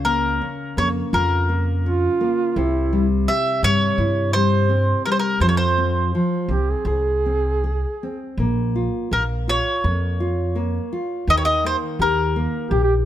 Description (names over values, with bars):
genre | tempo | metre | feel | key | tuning
fado-style ballad | 84 BPM | 4/4 | rubato | F harmonic minor, Bb minor from 8.4 s | A4 = 444 Hz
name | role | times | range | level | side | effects
mandolin | melody | 0.0-12.7 s | Bb4 to E5 | -21 LUFS | equal | none
nylon-string guitar | accompaniment | 0.0-13.1 s | C3 to Ab4 | -24 LUFS | left 2 dB | none
upright bass | bass | 0.0-13.1 s | Bb1 to G2 | -22 LUFS | equal | none
mellow duduk | second line | 1.8-8.3, 12.7-12.9 s | E4 to Ab4 | -23 LUFS | right 4 dB | none
room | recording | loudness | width
little or no reverb | close, detailed microphones | -18 LUFS | side -12 dB against mid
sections
0.0-8.4 A section; 8.4-13.1 B section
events
none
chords
0.0 Bbm/Db; 2.6 C; 5.4 Fm; 8.4 Bbm; 11.3 Eb